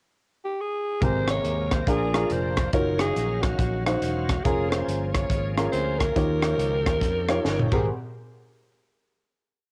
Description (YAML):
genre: uptempo gospel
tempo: 140 BPM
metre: 4/4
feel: swing 63% on 8ths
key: Ab major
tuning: A4 = 438 Hz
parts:
  - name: growling alto saxophone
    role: melody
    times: 0.4-7.9 s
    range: Gb4 to Db5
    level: -30 LUFS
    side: equal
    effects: cassette tape
  - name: warm upright piano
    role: accompaniment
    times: 1.0-7.9 s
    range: Ab1 to F5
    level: -30 LUFS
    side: equal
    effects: none
  - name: bright tonewheel organ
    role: sustained chords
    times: 1.0-7.9 s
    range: C3 to F5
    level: -37 LUFS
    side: equal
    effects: slow rotary speaker, overdrive, chorus vibrato
  - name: fingered electric bass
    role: bass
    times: 1.0-7.9 s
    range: Fb1 to F2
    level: -32 LUFS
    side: equal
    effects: tube saturation
  - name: crisp fusion drum kit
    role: drums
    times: 1.0-7.8 s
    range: crash cymbal, hi-hat, kick drum, rim click, snare drum, toms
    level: -29 LUFS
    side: equal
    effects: none
room: little or no reverb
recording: home recording on cassette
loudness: -25 LUFS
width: mono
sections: 0.0-1.0 pickup bar; 1.0-7.9 breakdown; 7.9-9.6 final hit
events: drum fill 7.5-7.9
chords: 0.0 N.C.; 1.0 Abmaj9; 1.9 Bb7; 2.7 Ebm9/Gb; 4.4 Bbm7/F; 6.2 Eb9; 7.7 Abmaj9; 7.9 N.C.